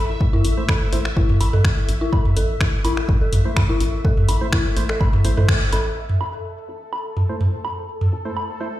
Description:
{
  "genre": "minimal techno",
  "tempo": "125 BPM",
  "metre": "4/4",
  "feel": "straight",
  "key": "A minor",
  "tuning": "A4 = 441 Hz",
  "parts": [
    { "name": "woody FM bass", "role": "bass", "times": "0.0-8.8 s", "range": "A1", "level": "-23 LUFS", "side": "equal", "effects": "sidechain pumping, high-pass filter" },
    { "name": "bubbling stepped-filter texture", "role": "texture", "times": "0.0-8.8 s", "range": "A4 to E5", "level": "-34 LUFS", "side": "equal", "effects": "chorus, built-in reverb, sidechain pumping" },
    { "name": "electronic kick drum", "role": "drums", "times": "0.2-5.6 s", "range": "none", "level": "-20 LUFS", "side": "equal", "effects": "none" },
    { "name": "dark detuned synth bell", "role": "riff", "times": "0.3-5.8 s", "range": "E4 to A4", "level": "-27 LUFS", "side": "left 3 dB", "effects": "chorus, sidechain pumping, ping-pong delay" },
    { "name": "electronic toms and woodblock", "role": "percussion", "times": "0.3-8.5 s", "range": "none", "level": "-21 LUFS", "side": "right 1 dB", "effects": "none" },
    { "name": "punchy analog drum machine", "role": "drums", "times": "0.4-5.8 s", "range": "finger snaps, hi-hat", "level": "-27 LUFS", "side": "left 1 dB", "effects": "low-pass filter on hats, low-pass filter on snare" },
    { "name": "percussive organ stab", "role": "stabs", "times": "0.6-8.7 s", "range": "A3 to C5", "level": "-31 LUFS", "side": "right 2 dB", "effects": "chorus, ping-pong delay" }
  ],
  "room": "light reverb, digital ambience",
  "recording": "played on a big sound system in a bare room, large studio reverb",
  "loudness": "-17 LUFS",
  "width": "side -14 dB against mid",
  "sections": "0.0-6.0 A section; 6.0-8.8 B section",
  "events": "band accent 5.5",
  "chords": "0.0 Am",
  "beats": "| 0.20 0.69 1.17 1.65 | 2.12 2.60 3.08 3.56 | 4.04 4.53 5.00 5.49 | 5.96 6.45 6.92 7.41 | 7.88 8.37"
}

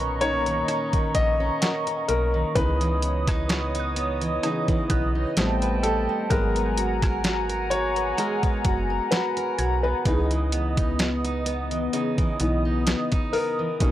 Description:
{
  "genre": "contemporary R&B",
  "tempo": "64 BPM",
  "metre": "4/4",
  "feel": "swing 54% on 16ths",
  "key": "C# dorian",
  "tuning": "A4 = 440 Hz",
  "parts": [
    { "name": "dark grand piano", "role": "accompaniment", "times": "0.0-13.9 s", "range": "A#2 to D#5", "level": "-28 LUFS", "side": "left 2 dB", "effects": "none" },
    { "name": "hollow soft pad", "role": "sustained chords", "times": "0.0-13.9 s", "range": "B3 to D#6", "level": "-28 LUFS", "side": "left 1 dB", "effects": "chorus" },
    { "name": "fingerpicked steel-string acoustic guitar", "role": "arpeggios", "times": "0.0-13.9 s", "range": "B2 to B4", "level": "-30 LUFS", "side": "right 3 dB", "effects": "tape echo" },
    { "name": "slap-like FM bass", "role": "bass", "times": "0.0-13.9 s", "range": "F#1 to C#2", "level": "-27 LUFS", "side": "equal", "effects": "none" },
    { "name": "detuned 8-bit digital drum machine", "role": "drums", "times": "0.0-13.9 s", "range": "hi-hat, kick drum, rim click, snare drum", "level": "-25 LUFS", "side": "equal", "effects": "none" },
    { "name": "mallet-like synth pluck", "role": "texture", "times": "0.0-10.5 s", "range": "F#5 to G#6", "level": "-39 LUFS", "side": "right 2 dB", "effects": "none" }
  ],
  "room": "little or no reverb",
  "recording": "dry, gritty hardware recording",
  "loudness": "-22 LUFS",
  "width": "side -13 dB against mid",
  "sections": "0.0-13.9 A section",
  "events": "grand piano solo 0.0-13.9",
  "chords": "0.0 Bmaj9; 2.6 C#m9; 5.4 Am9; 6.3 G#m9; 10.1 C#m9",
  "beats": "0.68 1.62 | 2.56 3.49 4.43 5.37 | 6.30 7.24 8.18 9.12 | 10.05 10.99 11.93 12.87 | 13.80"
}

